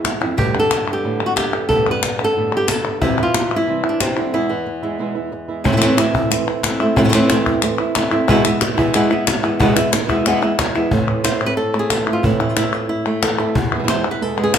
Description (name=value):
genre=flamenco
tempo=182 BPM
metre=4/4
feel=straight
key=unclear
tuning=A4 = 440 Hz
part: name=flamenco guitar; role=melody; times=0.0-14.6 s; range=E2 to C5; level=-18 LUFS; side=equal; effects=none
part: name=flamenco guitar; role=stabs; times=0.0-14.6 s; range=E2 to G4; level=-23 LUFS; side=right 5 dB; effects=none
part: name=cajon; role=percussion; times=0.0-14.6 s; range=none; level=-22 LUFS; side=left 2 dB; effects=none
part: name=palmas hand claps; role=percussion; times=0.0-14.6 s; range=none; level=-23 LUFS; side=left 6 dB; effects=none
room=moderate large studio reverb, RT60 0.9 s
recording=none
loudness=-15 LUFS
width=side -8 dB against mid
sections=0.0-5.7 A section; 5.7-10.9 B section; 10.9-14.6 C section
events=break 4.3-5.7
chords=0.4 Gadd9; 3.0 C; 4.3 E; 5.7 Am; 8.3 E; 10.9 Am; 13.6 E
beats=0.05 | 0.38 0.71 1.04 1.37 | 1.70 2.03 2.36 2.69 | 3.02 3.35 3.68 4.01 | 4.34 4.67 5.00 5.33 | 5.65 5.98 6.31 6.64 | 6.97 7.30 7.63 7.96 | 8.29 8.61 8.94 9.27 | 9.60 9.93 10.26 10.59 | 10.92 11.25 11.57 11.90 | 12.23 12.56 12.89 13.22 | 13.55 13.88 14.21 14.54